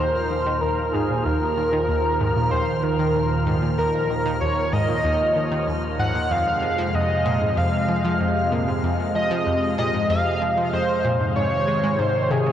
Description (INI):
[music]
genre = ambient, sequencer-driven space music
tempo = 95 BPM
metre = 4/4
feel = straight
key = unclear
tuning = A4 = 440 Hz
[part]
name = pulse-width lead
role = melody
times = 0.0-12.5 s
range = Ab4 to Gb5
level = -22 LUFS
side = equal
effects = chorus, ping-pong delay
[part]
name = phased analog pad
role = sustained chords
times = 0.0-12.5 s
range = Eb2 to Ab3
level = -25 LUFS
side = equal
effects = phaser, chorus
[part]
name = analog pluck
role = riff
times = 0.0-12.5 s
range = Eb2 to Ab3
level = -26 LUFS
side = equal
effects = chorus, phaser, ping-pong delay
[part]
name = bubbling stepped-filter texture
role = texture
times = 0.0-12.5 s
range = F3 to F6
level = -33 LUFS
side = equal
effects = chorus, built-in reverb
[sound]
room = wet huge ambient reverb, RT60 8.8 s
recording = worn, warbling old tape, cassette tape, warbly pitch drift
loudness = -19 LUFS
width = side -10 dB against mid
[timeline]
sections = 0.0-12.5 A section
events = none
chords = 0.0 Eb5; 6.3 Fm; 11.4 Ab